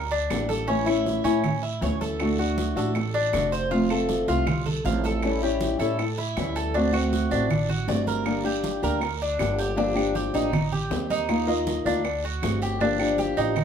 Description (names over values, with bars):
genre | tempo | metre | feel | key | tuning
latin, Cuban son and guajira | 158 BPM | 4/4 | straight | G minor | A4 = 440 Hz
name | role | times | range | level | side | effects
Cuban tres | arpeggios | 0.0-13.6 s | C#4 to F5 | -28 LUFS | right 1 dB | none
upright bass | bass | 0.0-13.6 s | F1 to A2 | -30 LUFS | right 1 dB | none
bongos | percussion | 0.1-13.6 s | none | -37 LUFS | left 4 dB | none
congas | percussion | 0.1-13.6 s | none | -31 LUFS | right 2 dB | none
flamenco guitar | accompaniment | 0.3-13.6 s | C3 to Bb4 | -25 LUFS | left 1 dB | none
claves | percussion | 0.3-13.6 s | none | -37 LUFS | right 8 dB | none
guiro | percussion | 0.3-13.6 s | none | -39 LUFS | right 6 dB | none
room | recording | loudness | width
moderate studio ambience, RT60 0.5 s | band playing live in one room | -22 LUFS | side -8 dB against mid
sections
0.0-9.8 A section; 9.8-13.6 B section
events
none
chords
0.0 Gm; 0.7 A; 2.2 D; 3.7 F; 5.2 A7; 6.7 D7; 8.3 Gm; 9.8 Gm7; 10.5 Am7b5; 11.3 Ebsus2; 12.1 D7; 12.8 Gm7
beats
0.31 | 0.69 1.07 1.45 1.82 | 2.20 2.58 2.96 3.34 | 3.72 4.09 4.47 4.85 | 5.23 5.61 5.99 6.37 | 6.75 7.13 7.51 7.88 | 8.26 8.64 9.02 9.40 | 9.78 10.16 10.54 10.92 | 11.30 11.68 12.05 12.43 | 12.81 13.19 13.57